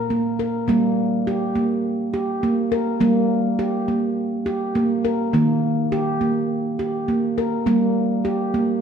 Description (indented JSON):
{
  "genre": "world meditative",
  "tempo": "103 BPM",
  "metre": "4/4",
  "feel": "swing 56% on 16ths",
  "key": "G minor",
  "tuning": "A4 = 439 Hz",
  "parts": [
    { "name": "handpan", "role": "solo", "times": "0.0-8.8 s", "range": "Bb2 to Bb4", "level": "-19 LUFS", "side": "right 1 dB", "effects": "none" }
  ],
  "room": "wet echo chamber reverb, RT60 1.7 s, studio ambience",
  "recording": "lossy compression artefacts",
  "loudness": "-19 LUFS",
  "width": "side -7 dB against mid",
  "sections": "0.0-8.8 A section",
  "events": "none",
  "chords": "0.0 N.C.; 0.7 Gm; 5.3 Eb; 7.7 Gm"
}